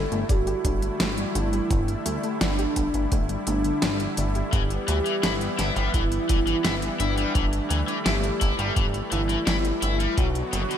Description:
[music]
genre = synthwave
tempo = 85 BPM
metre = 4/4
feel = straight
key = E minor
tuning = A4 = 444 Hz
[part]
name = soft octave-layered synth lead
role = melody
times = 0.0-10.8 s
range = D4 to A4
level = -29 LUFS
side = equal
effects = chorus, phaser, ping-pong delay
[part]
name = lush unison pad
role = sustained chords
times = 0.0-10.8 s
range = D3 to F#4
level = -31 LUFS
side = equal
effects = chorus, sidechain pumping
[part]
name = soft round pluck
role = arpeggios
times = 0.0-4.5 s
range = D3 to G4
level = -33 LUFS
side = left 2 dB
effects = chorus, digital delay
[part]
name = chorused synth bass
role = bass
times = 0.0-10.7 s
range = F#1 to D2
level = -27 LUFS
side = equal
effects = none
[part]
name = pop drum kit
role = drums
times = 0.1-10.8 s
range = hi-hat, snare drum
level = -29 LUFS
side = equal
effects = studio reverb, gated reverb
[part]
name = electronic kick drum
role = drums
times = 0.3-10.3 s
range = none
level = -25 LUFS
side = equal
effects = studio reverb
[part]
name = cranked stack guitar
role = riff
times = 4.5-10.8 s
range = B2 to E4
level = -29 LUFS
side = left 4 dB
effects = overdrive, wide subtle chorus, digital delay
[sound]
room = moderate lush hall reverb, RT60 2.0 s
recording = bright 1980s-style digital production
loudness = -22 LUFS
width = side -9 dB against mid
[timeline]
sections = 0.0-10.8 A section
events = none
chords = 0.0 Gsus2; 4.5 Em/G; 10.2 Bm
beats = 0.29 1.00 | 1.71 2.41 3.12 3.82 | 4.53 5.23 5.94 6.65 | 7.35 8.06 8.76 9.47 | 10.18

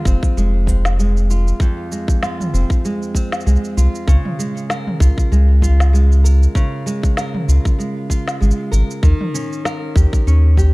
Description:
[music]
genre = folktronica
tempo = 97 BPM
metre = 4/4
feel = swing 56% on 16ths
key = unclear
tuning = A4 = 436 Hz
[part]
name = nylon-string guitar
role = arpeggios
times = 0.0-10.7 s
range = F2 to Bb4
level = -23 LUFS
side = right 1 dB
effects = low-pass filter, digital delay
[part]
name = warm sub bass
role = bass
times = 0.1-10.7 s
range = F1 to Eb2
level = -12 LUFS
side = equal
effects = none
[part]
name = electronic kick drum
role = drums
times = 0.1-10.7 s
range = none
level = -16 LUFS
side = equal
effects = small room ambience
[part]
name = organic electronic drum kit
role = drums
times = 0.1-10.7 s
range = cabasa, snare drum, toms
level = -25 LUFS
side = equal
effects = small room ambience
[sound]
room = digital ambience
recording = dark, warm production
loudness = -14 LUFS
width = side -23 dB against mid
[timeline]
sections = 0.0-10.7 A section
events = filter sweep on nylon-string guitar 0.0-10.7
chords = 0.0 Fm; 4.1 Db6; 9.0 Eb7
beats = 0.37 0.99 | 1.61 2.23 2.84 3.46 | 4.08 4.70 5.32 5.94 | 6.55 7.17 7.79 8.41 | 9.03 9.65 10.27

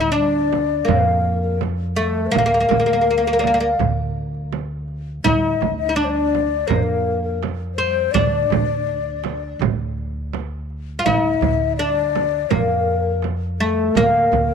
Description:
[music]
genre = Arabic maqam ensemble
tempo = 83 BPM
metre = 4/4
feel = straight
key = D maqam bayati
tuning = A4 = 440 Hz
[part]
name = oud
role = melody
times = 0.0-14.5 s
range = A3 to F4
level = -20 LUFS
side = equal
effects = none
[part]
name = breathy mellow ney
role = second line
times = 0.0-14.5 s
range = A4 to E5-39c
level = -23 LUFS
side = left 11 dB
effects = none
[part]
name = upright bass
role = bass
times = 0.0-14.5 s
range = D2 to F2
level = -25 LUFS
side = equal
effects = none
[part]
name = darbuka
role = percussion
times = 0.3-14.5 s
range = none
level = -27 LUFS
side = right 8 dB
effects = none
[part]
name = frame drum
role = percussion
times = 0.5-14.5 s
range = none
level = -23 LUFS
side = right 11 dB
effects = none
[sound]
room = small room ambience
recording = 1960s-style stereo with parts hard left and right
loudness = -17 LUFS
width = side -6 dB against mid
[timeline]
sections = 0.0-14.5 A section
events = none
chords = none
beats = 0.16 0.89 1.62 | 2.34 3.07 3.80 4.52 | 5.25 5.98 6.70 7.43 | 8.16 8.88 9.61 10.34 | 11.06 11.79 12.51 13.24 | 13.96

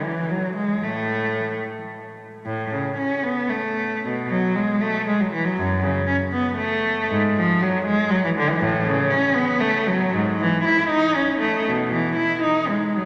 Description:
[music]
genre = classical, baroque-style suite movement for unaccompanied cello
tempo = 73-81 BPM (dotted quarters)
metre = 6/8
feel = rubato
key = A major, E major from 8.6 s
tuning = A4 = 441 Hz
[part]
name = rich cello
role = solo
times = 0.0-13.1 s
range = F#2 to E4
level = -22 LUFS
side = equal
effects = none
[sound]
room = wet cathedral reverb, RT60 4.5 s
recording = none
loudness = -22 LUFS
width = mono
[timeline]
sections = 0.0-2.5 A section; 2.5-13.1 B section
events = none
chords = none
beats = 0.03 | 0.84 1.65 | 2.46 3.24 | 4.03 4.81 | 5.57 6.32 | 7.10 7.86 | 8.61 9.35 | 10.13 10.89 | 11.65 12.43

